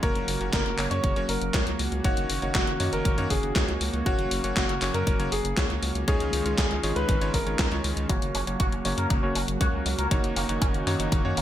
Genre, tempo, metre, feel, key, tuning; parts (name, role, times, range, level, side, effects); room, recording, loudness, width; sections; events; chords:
italo disco; 119 BPM; 4/4; straight; F# major; A4 = 440 Hz
warm grand piano; melody; 0.0-7.7 s; F#4 to C#5; -31 LUFS; left 1 dB; digital delay
warm analog pad; sustained chords; 0.0-11.4 s; C#3 to F#4; -33 LUFS; right 2 dB; chorus
bright electric grand piano; stabs; 0.0-11.4 s; C#3 to C#5; -32 LUFS; equal; low-pass filter
round analog bass; bass; 0.0-11.4 s; F#1 to F#2; -30 LUFS; equal
electronic kick drum; drums; 0.0-11.2 s; -26 LUFS; equal
gated 80s digital drum machine; drums; 0.0-11.4 s; handclaps, hi-hat, snare drum, toms; -30 LUFS; left 1 dB; gated reverb, gated reverb snare, high-pass filter on hats, high-pass filter on snare, high-pass filter on toms
electric guitar with an envelope filter; arpeggios; 8.1-11.4 s; D#3 to A#4; -33 LUFS; equal; tremolo, digital delay
light reverb; -23 LUFS; side -12 dB against mid
0.0-8.1 A section; 8.1-11.4 B section
drum fill 8.1-11.4; filter sweep on electric grand piano 8.1-11.4
0.0 F#; 2.0 D#m7/F#; 4.1 F#; 6.1 C#add9; 8.1 F#; 10.1 D#m7/F#